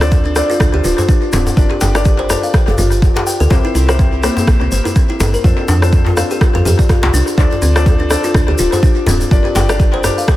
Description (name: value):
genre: afro house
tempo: 124 BPM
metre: 4/4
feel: swing 56% on 16ths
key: D minor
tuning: A4 = 441 Hz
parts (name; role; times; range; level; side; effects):
- felt-muted upright piano; stabs; 0.0-10.4 s; C4 to D5; -21 LUFS; left 3 dB; sidechain pumping, tape echo
- woody FM bass; bass; 0.0-10.1 s; D1 to F2; -15 LUFS; equal; sidechain pumping
- electronic rim click; drums; 0.0-10.4 s; none; -23 LUFS; equal; tape echo
- tube shaker; percussion; 0.0-10.4 s; none; -26 LUFS; left 2 dB; tape echo
- electronic kick drum; drums; 0.1-10.4 s; none; -12 LUFS; equal; none
- djembe; percussion; 0.1-10.2 s; none; -21 LUFS; left 1 dB; tape echo
- kalimba; arpeggios; 0.3-10.4 s; Bb3 to G5; -18 LUFS; left 1 dB; sidechain pumping, tape echo
room: light reverb, studio reverb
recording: echo-heavy mix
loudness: -11 LUFS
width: side -15 dB against mid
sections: 0.0-10.4 A section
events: none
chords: 0.0 Dm7; 1.6 Gm7; 3.5 C7; 5.4 F6; 7.4 Dm7; 9.3 Gm7